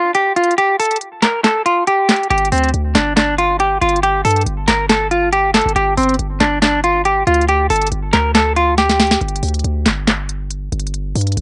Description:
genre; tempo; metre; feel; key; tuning
hip hop, trap; 139 BPM; 4/4; half-time; G minor; A4 = 440 Hz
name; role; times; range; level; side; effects
semi-hollow electric guitar; melody; 0.0-9.2 s; C4 to Bb4; -17 LUFS; equal; none
trap drum kit; drums; 0.1-11.4 s; handclaps, hi-hat, snare drum; -20 LUFS; equal; cassette tape
hard-hitting 808-style bass; bass; 2.3-11.4 s; G1 to G2; -22 LUFS; equal; none
room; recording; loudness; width
little or no reverb; home recording on cassette, nothing above 10.6 kHz; -15 LUFS; mono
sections
0.0-11.4 A section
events
break 0.0-2.3, 9.2-11.4; drum fill 8.8-9.2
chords
0.0 N.C.; 2.3 G5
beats
0.15 | 0.58 1.01 1.44 1.87 | 2.31 2.74 3.17 3.60 | 4.03 4.46 4.90 5.33 | 5.76 6.19 6.62 7.05 | 7.49 7.92 8.35 8.78 | 9.21 9.64 10.08 10.51 | 10.94 11.37

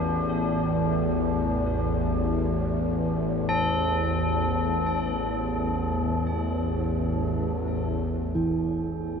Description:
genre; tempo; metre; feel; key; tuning
dark ambient drone; free time; none; none; unclear; A4 = 435 Hz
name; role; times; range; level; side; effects
tubular bells; arpeggios; 0.0-9.0 s; D4 to A4; -30 LUFS; left 2 dB; ping-pong delay
bowed-like drone; drone; 0.0-9.2 s; A1 to E2; -25 LUFS; equal; built-in reverb
bronze singing bowl; texture; 0.0-9.2 s; E3 to E4; -34 LUFS; right 4 dB; none
impact; percussion; 8.4-8.5 s; none; -46 LUFS; right 1 dB; none
room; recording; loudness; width
wet huge ambient reverb, RT60 8.7 s; cassette tape, nothing above 8.0 kHz; -24 LUFS; side -6 dB against mid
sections
0.0-8.4 A section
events
none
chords
0.0 Asus2; 8.4 A5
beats
free time

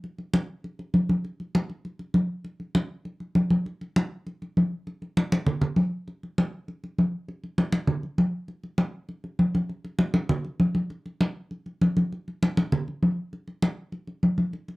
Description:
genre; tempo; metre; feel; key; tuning
jazz; 199 BPM; 4/4; straight; none; none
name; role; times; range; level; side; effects
congas; percussion; 0.0-14.8 s; none; -23 LUFS; equal; none
room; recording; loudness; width
moderate studio reverb, RT60 0.5 s; worn, warbling old tape, cassette tape, warbly pitch drift; -24 LUFS; side -22 dB against mid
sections
0.0-3.7 A section; 3.7-13.3 B section; 13.3-14.8 C section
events
none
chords
none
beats
| 0.04 0.34 0.64 0.94 | 1.24 1.54 1.85 2.15 | 2.45 2.75 3.06 3.36 | 3.66 3.96 4.26 4.57 | 4.87 5.17 5.47 5.77 | 6.07 6.38 6.68 6.98 | 7.28 7.58 7.88 8.19 | 8.49 8.79 9.09 9.39 | 9.70 10.00 10.30 10.60 | 10.90 11.21 11.51 11.81 | 12.11 12.41 12.72 13.02 | 13.32 13.62 13.93 14.23 | 14.53

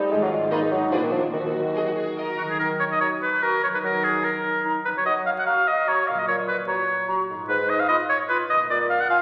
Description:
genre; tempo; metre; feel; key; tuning
cinematic, playful, whimsical film cue; 148 BPM; 3/4; straight; Eb minor; A4 = 444 Hz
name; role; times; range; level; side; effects
mellow bassoon; accompaniment; 0.0-9.0 s; Ab2 to Bb3; -29 LUFS; equal; none
rich studio viola section; accompaniment; 0.0-2.4 s; D4 to Gb4; -35 LUFS; equal; none
concert harp; arpeggios; 0.0-9.2 s; Gb2 to C5; -36 LUFS; equal; none
clear studio double bass section; bass; 0.1-1.7 s; Ab1 to Eb2; -41 LUFS; equal; none
rich studio cello section; bass; 0.1-1.7 s; Eb2 to Bb2; -37 LUFS; equal; none
warm studio violin section; melody; 0.5-2.3 s; D5 to Eb5; -40 LUFS; equal; none
rich studio violin section; second line; 0.5-2.6 s; F4 to Cb5; -36 LUFS; equal; none
clear oboe; second line; 2.4-9.2 s; Gb4 to Gb5; -24 LUFS; equal; none
bright silver concert flute; second line; 3.0-9.2 s; Ab5 to Cb6; -36 LUFS; equal; none
warm clarinet; second line; 3.0-9.2 s; Eb4 to Gb4; -34 LUFS; equal; none
room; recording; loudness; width
wet scoring stage reverb, RT60 1.7 s; very old 78 rpm record, vinyl crackle; -23 LUFS; mono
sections
0.0-2.6 A section; 2.6-9.2 B section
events
none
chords
0.1 Fm7b5/Ab; 0.9 Bb(b9); 1.3 Ebm; 5.1 Gb; 6.3 Gb/Bb; 7.5 Fdim/Ab; 8.7 Bb5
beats
| 0.11 0.51 0.92 | 1.33 1.75 2.17 | 2.59 3.00 3.42 | 3.83 4.24 4.65 | 5.05 5.46 5.87 | 6.27 6.67 7.08 | 7.48 7.88 8.29 | 8.69 9.09

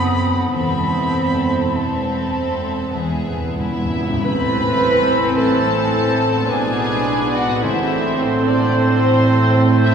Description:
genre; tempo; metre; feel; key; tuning
classical, slow romantic movement for symphony orchestra; 43-56 BPM; 3/4; rubato; A minor; A4 = 440 Hz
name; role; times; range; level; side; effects
warm studio violin section; melody; 0.0-9.9 s; C5 to B5; -25 LUFS; left 2 dB; none
bright concert flute; second line; 0.0-9.9 s; A5 to E6; -27 LUFS; left 1 dB; none
dark studio violin section; second line; 0.0-9.9 s; C4 to B4; -26 LUFS; left 1 dB; none
warm studio viola section; accompaniment; 0.0-9.9 s; E3 to D4; -22 LUFS; right 2 dB; none
mellow French horn section; sustained chords; 0.0-9.9 s; A3 to E4; -30 LUFS; equal; none
concert harp; arpeggios; 0.0-9.9 s; A2 to C6; -28 LUFS; left 2 dB; none
dark studio double bass section; bass; 0.0-9.9 s; E1 to B1; -27 LUFS; right 2 dB; none
warm studio cello section; bass; 0.0-9.9 s; E2 to B2; -23 LUFS; right 2 dB; none
timpani; percussion; 3.0-9.2 s; E2 to A2; -28 LUFS; equal; none
mellow clarinet; second line; 3.6-9.9 s; C4 to B4; -23 LUFS; right 2 dB; none
clear trombone section; sustained chords; 4.2-9.9 s; A2 to A3; -30 LUFS; right 3 dB; none
clear trumpet section; stabs; 4.2-9.9 s; A4 to D5; -26 LUFS; right 3 dB; none
mellow cor anglais; second line; 4.3-9.9 s; A4 to C5; -28 LUFS; right 1 dB; none
room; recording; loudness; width
wet cathedral reverb, RT60 5.0 s; heard from further back in the room, small room ambience; -15 LUFS; side -7 dB against mid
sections
0.0-4.2 A section; 4.2-9.9 B section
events
timpani fill 2.9-4.2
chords
0.0 D#dim7; 0.5 Am/E; 2.9 E; 4.2 Am; 6.5 G#dim/B; 7.6 Am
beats
| 0.53 1.75 2.94 | 4.24 5.37 6.49 | 7.62 8.74 9.83

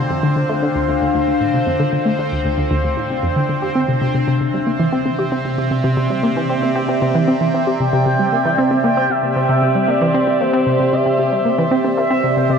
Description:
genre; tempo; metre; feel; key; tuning
ambient, sequencer-driven space music; 115 BPM; 4/4; straight; unclear; A4 = 443 Hz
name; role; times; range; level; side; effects
evolving wavetable pad; sustained chords; 0.0-12.6 s; C3 to F5; -19 LUFS; equal; phaser, built-in reverb
bubbling stepped-filter texture; texture; 0.0-12.6 s; C4 to C5; -25 LUFS; equal; chorus, built-in reverb
analog pluck; riff; 0.1-12.6 s; D2 to G4; -18 LUFS; equal; chorus, ping-pong delay
expressive synth lead; melody; 7.8-12.6 s; C5 to G5; -18 LUFS; right 1 dB; wide subtle chorus, ping-pong delay
room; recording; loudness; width
wet huge ambient reverb, RT60 8.2 s; worn, warbling old tape, cassette tape, warbly pitch drift; -15 LUFS; side -6 dB against mid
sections
0.0-12.6 A section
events
filter sweep on synth arpeggio sound 0.0-12.6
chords
0.0 Dm7; 3.6 Cadd9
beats
0.50 1.02 | 1.54 2.06 2.58 3.10 | 3.63 4.15 4.67 5.19 | 5.71 6.24 6.76 7.28 | 7.80 8.32 8.84 9.37 | 9.89 10.41 10.93 11.45 | 11.97 12.50

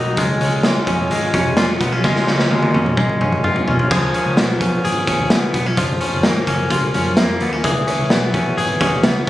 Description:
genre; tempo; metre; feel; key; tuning
jangly indie pop; 128 BPM; 4/4; straight; unclear; A4 = 440 Hz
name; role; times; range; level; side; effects
string machine, cellos; sustained chords; 0.0-3.9 s; E#4 to A#5; -27 LUFS; equal; phaser, ensemble chorus
direct-recorded clean electric guitar; arpeggios; 0.0-9.3 s; D#3 to G#4; -19 LUFS; left 1 dB; ping-pong delay
vintage muted picked electric bass; bass; 0.0-9.3 s; E#1 to F#2; -22 LUFS; equal; tube saturation
raw garage drum kit; drums; 0.2-9.3 s; crash cymbal, hi-hat, kick drum, snare drum, toms; -18 LUFS; equal; none
room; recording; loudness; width
light reverb; recorded on a phone in the room, studio reverb; -15 LUFS; side -14 dB against mid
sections
0.0-3.9 A section; 3.9-9.3 B section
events
drum fill 2.0-3.9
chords
0.2 C#; 3.9 C#7; 5.8 F#maj7; 7.6 C#m7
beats
| 0.17 0.64 1.11 1.57 | 2.04 2.51 2.97 3.44 | 3.91 4.37 4.84 5.31 | 5.78 6.24 6.71 7.17 | 7.64 8.11 8.57 9.04

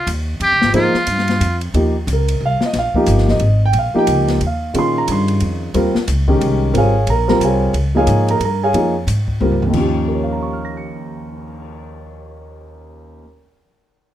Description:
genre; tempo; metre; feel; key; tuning
modal jazz; 180 BPM; 3/4; swing 63% on 8ths; Eb mixolydian; A4 = 440 Hz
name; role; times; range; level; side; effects
trumpet with metal mute; melody; 0.0-1.6 s; F4 to G4; -16 LUFS; right 1 dB; none
upright bass; bass; 0.1-13.2 s; G1 to Bb2; -18 LUFS; equal; none
open jazz drum kit; drums; 0.1-11.7 s; crash cymbal, cymbal swell, hi-hat, kick drum, ride cymbal, snare drum, toms; -25 LUFS; left 2 dB; none
dark concert grand piano; accompaniment; 0.7-13.6 s; Eb2 to Db7; -17 LUFS; right 1 dB; none
room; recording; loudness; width
light reverb; close, detailed microphones; -14 LUFS; side -11 dB against mid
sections
0.0-1.7 A section; 1.7-9.7 B section; 9.7-11.7 C section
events
drum fill 9.4-9.7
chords
0.0 Db (rootless); 1.7 Eb9; 5.7 Db; 9.7 Eb9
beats
0.07 0.41 | 0.74 1.07 1.41 | 1.74 2.07 2.40 | 2.74 3.07 3.40 | 3.74 4.07 4.40 | 4.74 5.07 5.40 | 5.74 6.07 6.40 | 6.73 7.07 7.40 | 7.73 8.07 8.40 | 8.73 9.07 9.40 | 9.73 10.07 10.40 | 10.74 11.07 11.40

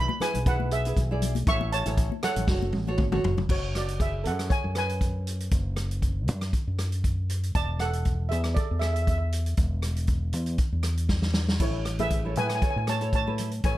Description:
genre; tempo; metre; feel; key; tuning
calypso; 118 BPM; 4/4; straight; F# minor; A4 = 440 Hz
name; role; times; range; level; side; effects
steel pan; melody; 0.0-13.8 s; E4 to C#6; -30 LUFS; right 1 dB; none
nylon-string guitar; accompaniment; 0.0-3.4, 11.6-13.8 s; E4 to D5; -33 LUFS; right 2 dB; none
fingered electric bass; bass; 0.0-13.8 s; E1 to A2; -28 LUFS; equal; none
congas; percussion; 0.1-3.5, 12.0-13.5 s; none; -35 LUFS; left 6 dB; none
vintage drum kit; drums; 0.2-13.8 s; crash cymbal, hi-hat, kick drum, rim click, snare drum, toms; -28 LUFS; equal; none
room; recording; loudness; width
light reverb; none; -24 LUFS; side -15 dB against mid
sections
0.0-3.5 A section; 3.5-13.8 B section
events
drum fill 2.5-3.5, 11.1-11.6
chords
0.0 E7/B; 1.5 A; 2.5 F#m; 3.5 F#sus2; 7.5 Esus4; 11.6 Amaj7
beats
0.47 0.97 | 1.47 1.98 2.48 2.99 | 3.49 4.00 4.51 5.01 | 5.52 6.03 6.53 7.04 | 7.55 8.06 8.56 9.07 | 9.58 10.09 10.60 11.10 | 11.61 12.12 12.63 13.13 | 13.64

